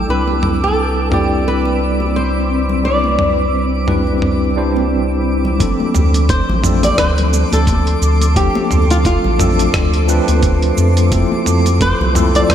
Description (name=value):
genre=sunset chillout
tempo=87 BPM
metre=4/4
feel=swing 57% on 16ths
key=D dorian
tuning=A4 = 441 Hz
part: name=tine electric piano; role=accompaniment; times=0.0-12.5 s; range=F3 to D5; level=-18 LUFS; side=moving between left 4 dB and right 3 dB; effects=medium stereo tremolo, auto-pan, tape echo
part: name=shimmering ambient pad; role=sustained chords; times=0.0-12.5 s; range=C4 to E6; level=-24 LUFS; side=left 1 dB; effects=chorus, built-in reverb
part: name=round analog bass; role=bass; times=0.0-12.5 s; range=A1 to F2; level=-16 LUFS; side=equal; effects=none
part: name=twinkling granular texture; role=texture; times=0.0-12.5 s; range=D6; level=-28 LUFS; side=right 1 dB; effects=built-in reverb
part: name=flamenco guitar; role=melody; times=0.1-12.5 s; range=F4 to D5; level=-19 LUFS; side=equal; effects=ping-pong delay, slapback echo
part: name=congas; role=percussion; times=0.3-12.5 s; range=none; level=-26 LUFS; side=left 2 dB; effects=none
part: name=dusty soul sampler-style drum kit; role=drums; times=0.4-12.5 s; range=cabasa, hi-hat, rim click, toms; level=-21 LUFS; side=right 1 dB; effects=studio reverb
part: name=electronic kick drum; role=drums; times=5.6-12.5 s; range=none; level=-19 LUFS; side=equal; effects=overdrive, studio reverb
room=moderate lush hall reverb, RT60 2.8 s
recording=big arena sound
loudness=-12 LUFS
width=side -9 dB against mid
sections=0.0-5.6 A section; 5.6-12.5 B section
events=filter sweep on drum 0.0-5.6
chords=0.1 Cmaj9; 5.6 Dm7; 11.1 Fmaj7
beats=| 0.09 0.78 1.47 2.15 | 2.84 3.53 4.22 4.91 | 5.60 6.29 6.98 7.67 | 8.36 9.05 9.74 10.43 | 11.12 11.81 12.50